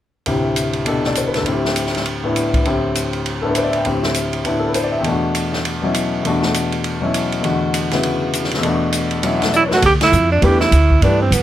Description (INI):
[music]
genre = modal jazz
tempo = 201 BPM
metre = 4/4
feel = swing 60% on 8ths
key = unclear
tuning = A4 = 440 Hz
[part]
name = clear concert grand piano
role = accompaniment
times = 0.3-11.2 s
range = D2 to G5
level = -18 LUFS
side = left 2 dB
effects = none
[part]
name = open jazz drum kit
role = drums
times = 0.3-11.4 s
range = hi-hat, kick drum, ride cymbal, snare drum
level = -22 LUFS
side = right 1 dB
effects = none
[part]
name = warm tenor saxophone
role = melody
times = 9.6-11.4 s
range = B3 to G4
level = -15 LUFS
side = right 3 dB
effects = none
[part]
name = upright bass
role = bass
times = 9.8-11.4 s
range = D2 to G2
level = -14 LUFS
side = right 1 dB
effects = none
[sound]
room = light reverb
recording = close, detailed microphones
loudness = -15 LUFS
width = side -12 dB against mid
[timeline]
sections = 0.3-9.8 A section; 9.8-11.4 B section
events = drum fill 9.5; band accent 10.0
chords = 0.3 D9sus4; 5.0 E9sus4; 9.8 Dsus4